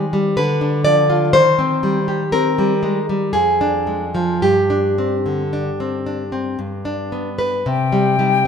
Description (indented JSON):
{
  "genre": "romantic duo for flute and classical guitar",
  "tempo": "53-63 BPM",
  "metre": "3/4",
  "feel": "rubato",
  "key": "C minor",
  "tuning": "A4 = 443 Hz",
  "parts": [
    { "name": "nylon-string guitar", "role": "accompaniment", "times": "0.0-8.5 s", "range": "F2 to D5", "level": "-16 LUFS", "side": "equal", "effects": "none" },
    { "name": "silver concert flute", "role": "melody", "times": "7.7-8.5 s", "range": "G5", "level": "-17 LUFS", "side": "left 6 dB", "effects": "none" }
  ],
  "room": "moderate concert hall reverb, RT60 2.4 s",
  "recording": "minimal, uncompressed stereo recording",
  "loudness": "-15 LUFS",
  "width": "side -7 dB against mid",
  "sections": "0.0-7.7 A section",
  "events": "none",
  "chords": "0.4 Bdim/D; 1.4 Cm/Eb; 3.3 Ddim/F; 4.4 Gsus4; 6.6 G; 7.7 Cm",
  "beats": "0.38 | 1.35 2.34 3.35 | 4.43 5.53 6.60 | 7.67"
}